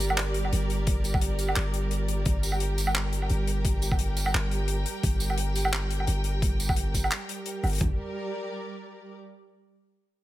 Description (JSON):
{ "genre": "half-time drum and bass", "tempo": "173 BPM", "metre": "4/4", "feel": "swing 55% on 16ths, half-time", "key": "G minor", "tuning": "A4 = 440 Hz", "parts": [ { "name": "rich studio string section", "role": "sustained chords", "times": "0.0-9.2 s", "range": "G3 to G5", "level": "-34 LUFS", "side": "right 1 dB", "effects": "vintage 12-bit sampler grit, sidechain pumping" }, { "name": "long sustained 808-style bass", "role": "bass", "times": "0.0-8.0 s", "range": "G1", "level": "-28 LUFS", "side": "equal", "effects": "none" }, { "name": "modern studio drum kit", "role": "drums", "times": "0.0-7.8 s", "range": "handclaps, hi-hat, tambourine, woodblock", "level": "-30 LUFS", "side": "equal", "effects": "none" }, { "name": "boom bap sampler-style drum kit", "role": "drums", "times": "0.9-7.9 s", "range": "kick drum, toms", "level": "-26 LUFS", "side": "equal", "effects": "overdrive" } ], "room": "studio ambience", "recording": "none", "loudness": "-25 LUFS", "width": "side -15 dB against mid", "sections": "0.0-7.8 A section; 7.8-9.2 B section", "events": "none", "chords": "0.0 Gm" }